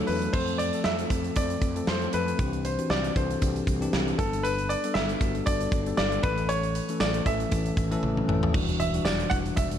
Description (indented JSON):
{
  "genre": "1980s-style pop",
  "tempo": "117 BPM",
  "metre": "4/4",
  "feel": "swing 55% on 16ths",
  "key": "unclear",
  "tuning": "A4 = 441 Hz",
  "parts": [
    { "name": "clear baby grand piano", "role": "melody", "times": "0.0-9.8 s", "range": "A4 to F#5", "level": "-30 LUFS", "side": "equal", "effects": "ping-pong delay" },
    { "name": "bell-like tine electric piano", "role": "accompaniment", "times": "0.0-9.8 s", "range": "E3 to A4", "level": "-30 LUFS", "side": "left 3 dB", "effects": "none" },
    { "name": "fretless electric bass", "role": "bass", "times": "0.1-9.8 s", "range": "E1 to F2", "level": "-32 LUFS", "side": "equal", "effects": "none" },
    { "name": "big rock drum kit", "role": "drums", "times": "0.1-9.8 s", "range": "crash cymbal, hi-hat, kick drum, snare drum, tambourine, toms", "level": "-28 LUFS", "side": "right 1 dB", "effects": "none" }
  ],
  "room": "moderate lush hall reverb, RT60 1.9 s",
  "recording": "dark, warm production",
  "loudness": "-24 LUFS",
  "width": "side -9 dB against mid",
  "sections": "0.3-8.5 A section; 8.5-9.8 B section",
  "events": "drum fill 8.0-8.5",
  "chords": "0.3 F; 2.4 Cadd9; 4.2 Gadd9; 6.2 A; 8.5 Em9",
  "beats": "| 0.34 0.85 1.36 1.88 | 2.39 2.90 3.42 3.93 | 4.44 4.96 5.47 5.98 | 6.49 7.01 7.52 8.03 | 8.54 9.06 9.57"
}